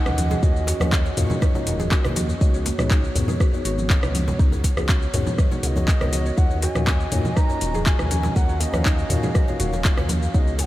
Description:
afro house; 121 BPM; 4/4; straight; Eb minor; A4 = 440 Hz
bright reedy bansuri; melody; 0.0-2.2, 5.6-10.7 s; Db5 to Bb5; -33 LUFS; left 1 dB; tape echo
dark analog pad; sustained chords; 0.0-10.7 s; Cb4 to F5; -33 LUFS; right 1 dB; chorus, sidechain pumping
mallet-like synth pluck; arpeggios; 0.0-10.5 s; Bb3 to Eb5; -34 LUFS; equal; analog chorus, sidechain pumping, tape echo
felt-muted upright piano; stabs; 0.0-10.5 s; Bb3 to Db5; -31 LUFS; left 3 dB; sidechain pumping, tape echo
smooth gliding synth bass; bass; 0.1-10.7 s; Eb1 to Eb2; -25 LUFS; equal; tube saturation, sidechain pumping
afro-pop drum kit; drums; 0.1-10.7 s; handclaps, hi-hat, rim click, shaker, toms; -27 LUFS; equal; overdrive
congas; percussion; 0.1-10.2 s; -30 LUFS; right 2 dB
djembe; percussion; 0.2-10.7 s; -31 LUFS; left 1 dB
electronic kick drum; drums; 0.4-10.4 s; -19 LUFS; equal
light reverb, digital ambience; -18 LUFS; side -15 dB against mid
0.0-10.7 A section
0.0 Ebm7; 2.4 Db7sus4; 6.4 Ebm7

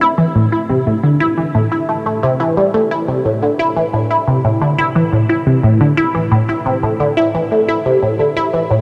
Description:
ambient; 88 BPM; 4/4; straight; A minor; A4 = 440 Hz
resonant blip pluck; solo; 0.0-8.8 s; A2 to E4; -15 LUFS; equal; phaser, analog chorus, tape echo
wet huge ambient reverb, RT60 6.9 s; -15 LUFS; mono
0.0-8.8 A section

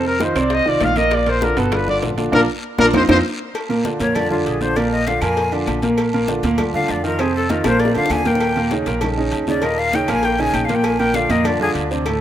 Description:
Afro-Cuban jazz; 197 BPM; 4/4; straight; Bb mixolydian; A4 = 440 Hz
mellow trumpet; melody; 0.0-3.2 s; A4 to F5; -19 LUFS; left 1 dB; slapback echo
warm grand piano; accompaniment; 0.0-12.2 s; A2 to C5; -19 LUFS; right 2 dB
upright bass; bass; 0.0-12.2 s; G1 to F2; -26 LUFS; equal
bongos and cowbell; percussion; 0.0-12.2 s; -29 LUFS; left 7 dB
congas; percussion; 0.1-12.2 s; -27 LUFS; left 4 dB
guiro; percussion; 0.2-12.2 s; -36 LUFS; left 3 dB
timbales and agogo bells; percussion; 0.2-12.2 s; -28 LUFS; right 6 dB
claves; percussion; 0.4-12.2 s; -35 LUFS; left 3 dB
breathy bright jazz flute; second line; 4.0-11.7 s; F4 to Ab5; -22 LUFS; left 2 dB
light reverb, small room ambience; rough home demo mix; -16 LUFS; side -11 dB against mid
0.0-3.5 A section; 3.5-12.2 A section
trumpet solo 0.0-3.5; band accent 2.3-3.5; drum fill 2.8-3.5, 7.7-8.4; flute solo 3.5-12.2
0.0 F5; 1.1 Bb; 1.7 G5; 2.3 Bb; 2.9 F5; 3.5 Bb; 7.2 F5; 7.8 Bb; 8.4 Eb7; 10.8 Bbadd9

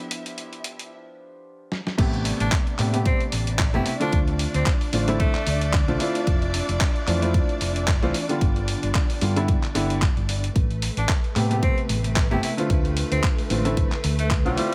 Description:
nu-disco, nu disco; 112 BPM; 4/4; swing 56% on 16ths; A minor; A4 = 438 Hz
clear concert grand piano; accompaniment; 0.0-14.7 s; C3 to G4; -30 LUFS; equal; vintage 12-bit sampler grit, sidechain pumping, delay
warm studio string section; sustained chords; 0.0-14.7 s; A3 to E5; -35 LUFS; equal; sidechain pumping
dusty soul sampler-style drum kit; drums; 0.1-14.7 s; crash cymbal, handclaps, hi-hat, snare drum; -32 LUFS; equal
hollow-body short-scale fingered electric bass; bass; 2.0-14.5 s; F1 to A2; -27 LUFS; equal
electronic kick drum; drums; 2.0-14.4 s; -25 LUFS; equal
bright tenor saxophone; melody; 2.4-5.7, 11.0-14.7 s; G3 to E4; -33 LUFS; equal; dub echo
studio ambience; -23 LUFS; mono
0.0-2.0 A section; 2.0-14.7 B section
filter sweep on drum 0.0-2.0; filter sweep on grand piano 0.0-2.0; drum fill 1.7; drop 2.0-14.7
0.0 G7; 2.0 Am9; 4.1 Dm7; 6.3 Fmaj7; 8.1 G7; 10.6 Am9; 12.7 Dm7

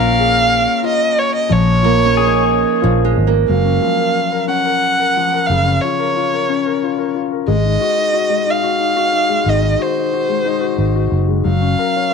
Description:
acoustic folk-pop ballad; 91 BPM; 3/4; straight; A4 = 440 Hz
dark violin; melody; 0.0-12.1 s; C5 to Gb5; -17 LUFS; right 2 dB
pedal steel guitar; second line; 0.0-3.1 s; Ab4 to Bb4; -23 LUFS; left 8 dB
warm grand piano; accompaniment; 0.0-12.1 s; Db3 to Db5; -19 LUFS; left 11 dB
picked steel-string acoustic guitar; arpeggios; 0.0-4.2 s; F3 to Eb4; -18 LUFS; right 12 dB
vintage muted fingered electric bass; bass; 0.0-11.7 s; Gb1 to Bb1; -16 LUFS; right 1 dB
light reverb, small room ambience; 1960s-style stereo with parts hard left and right; -13 LUFS; side -5 dB against mid
0.0-3.5 A section; 3.5-12.1 B section
0.0 Bbm7; 3.5 Gbmaj7; 7.5 Ab7; 11.5 Gbmaj7

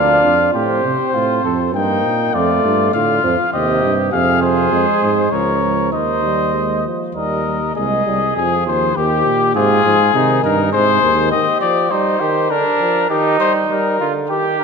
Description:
classical, imitative canzona for brass ensemble; 100 BPM; 3/4; straight; Ab major from 4.1 s; A4 = 440 Hz
mellow trumpet; melody; 0.0-14.6 s; G4 to G5; -17 LUFS; left 7 dB
mellow trumpet; second line; 0.0-14.6 s; D4 to C5; -20 LUFS; right 6 dB
mellow trombone; accompaniment; 0.0-14.6 s; C3 to D4; -20 LUFS; right 2 dB
mellow bass trombone; bass; 0.0-11.3 s; C2 to C3; -20 LUFS; right 3 dB
wet scoring stage reverb, RT60 2.0 s; minimal, uncompressed stereo recording; -13 LUFS; side -5 dB against mid
0.5-7.8 A section; 7.8-14.6 B section
0.0 Dm; 0.5 F/A; 1.7 Eb/G; 2.3 Dm/F; 3.5 Cm/Eb; 4.1 Fm; 5.3 Bbm/Db; 5.9 Ebsus4; 7.2 Eb; 7.8 Ab/C; 9.0 Eb; 9.6 Ab; 11.3 Eb; 12.5 Bb/D; 13.1 Eb

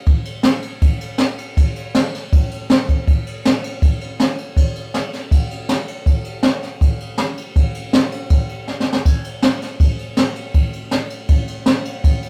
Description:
rock; 160 BPM; 4/4; straight
jazz brush drum kit; drums; 0.1-12.3 s; kick drum, ride cymbal, snare drum, splash cymbal; -18 LUFS; equal
moderate studio reverb, RT60 0.5 s; rough rehearsal-room recording, warm saturation; -18 LUFS; mono
0.0-12.3 A section
drum fill 8.7-9.1

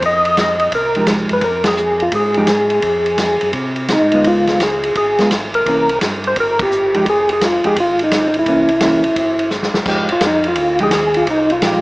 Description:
soul jazz organ trio; 170 BPM; 4/4; swing 65% on 8ths; A4 = 440 Hz
percussive tonewheel organ; melody; 0.0-11.8 s; Eb4 to Eb5; -14 LUFS; equal; slow rotary speaker, chorus vibrato
mellow tonewheel organ; bass; 0.0-11.8 s; F1 to C3; -28 LUFS; equal; overdrive, chorus vibrato, slow rotary speaker
vintage drum kit; drums; 0.0-11.7 s; crash cymbal, hi-hat, kick drum, ride cymbal, snare drum; -19 LUFS; equal
hollow-body jazz guitar; accompaniment; 1.0-11.8 s; E3 to G4; -19 LUFS; right 1 dB
light reverb; small speaker sound; -13 LUFS; side -21 dB against mid
0.0-9.9 A section; 9.9-11.8 B section
band accent 1.6, 6.5; drum fill 9.5-9.9; tonewheel organ solo 9.9-11.8
0.0 Fm9; 4.3 Db7; 5.7 C7b9; 7.1 Fm7; 8.5 C7b9; 9.9 Fm9

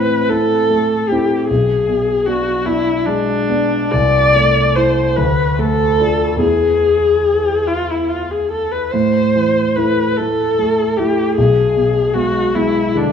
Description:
classical, romantic duo for viola and grand piano; 49 BPM (dotted quarters); 6/8; uneven beats, rubato; A minor; A4 = 440 Hz
warm viola; melody; 0.0-13.1 s; D4 to D5; -15 LUFS; left 2 dB
warm grand piano; accompaniment; 0.0-13.1 s; B1 to F4; -17 LUFS; right 1 dB
moderate recital hall reverb, RT60 1.6 s; -13 LUFS; side -7 dB against mid
0.0-13.1 A section
0.0 Am; 1.5 G#dim/B; 3.9 Am/C; 5.2 Dm; 6.4 E; 8.9 Am; 11.4 G#m/B

